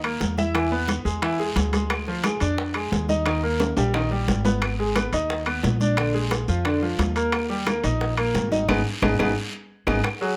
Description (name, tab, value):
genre	latin, salsa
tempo	177 BPM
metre	4/4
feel	straight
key	G# harmonic minor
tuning	A4 = 442 Hz
part	bright concert grand piano	accompaniment	0.0-10.4 s	D3 to E5	-27 LUFS	equal	none
part	upright bass	bass	0.0-10.0 s	G#1 to E#2	-29 LUFS	equal	none
part	claves	percussion	0.0-10.2 s	none	-36 LUFS	equal	none
part	congas	percussion	0.0-10.4 s	none	-32 LUFS	equal	none
part	timbales	percussion	0.0-10.2 s	none	-31 LUFS	equal	none
part	bongos	percussion	0.2-10.4 s	none	-36 LUFS	equal	none
part	guiro	percussion	0.2-10.4 s	none	-39 LUFS	equal	none
room	light reverb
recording	close, detailed microphones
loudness	-23 LUFS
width	mono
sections	0.0-10.0 A section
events	drum fill 3.6-4.6, 9.2-10.0; band accent 8.7-10.0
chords	0.0 G#sus2 (rootless); 0.5 E; 1.9 D#sus24; 3.3 D#; 4.6 G#m; 6.0 A#7; 7.3 D#; 8.7 G#m